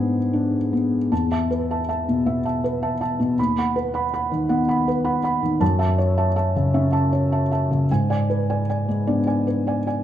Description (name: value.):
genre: neoclassical minimalist piano.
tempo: 53 BPM (dotted quarters).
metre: 6/8.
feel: uneven beats, rubato.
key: unclear.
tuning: A4 = 440 Hz.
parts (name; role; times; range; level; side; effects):
felt-muted upright piano; solo; 0.0-10.0 s; D#2 to B5; -19 LUFS; equal; none.
room: moderate recital hall reverb, RT60 1.8 s.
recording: dark, warm production.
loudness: -19 LUFS.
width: side -11 dB against mid.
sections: 0.0-1.1 A section; 1.1-10.0 B section.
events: none.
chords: 0.0 G#dim; 1.1 Esus4; 3.4 B/D#; 5.6 F#m7; 7.9 G#dim.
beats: | 1.11 2.26 | 3.38 4.50 | 5.61 6.73 | 7.89 9.06.